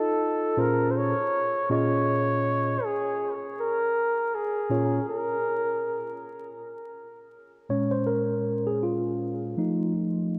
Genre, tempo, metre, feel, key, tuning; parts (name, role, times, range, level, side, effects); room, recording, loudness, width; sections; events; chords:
hip hop; 80 BPM; 4/4; swing 59% on 16ths; Bb minor; A4 = 440 Hz
breathy flugelhorn; melody; 0.0-6.2 s; Ab4 to Db5; -29 LUFS; equal; tape echo
mellow tine electric piano; accompaniment; 0.0-10.4 s; Bb2 to Eb5; -29 LUFS; equal
wet huge ambient reverb, RT60 4.5 s; dreamy mix soaked in reverb, vinyl crackle; -27 LUFS; mono
0.0-6.6 A section; 6.6-10.4 B section
tine electric piano solo 6.6-10.4
0.0 F7; 0.6 Bbm7; 9.6 F7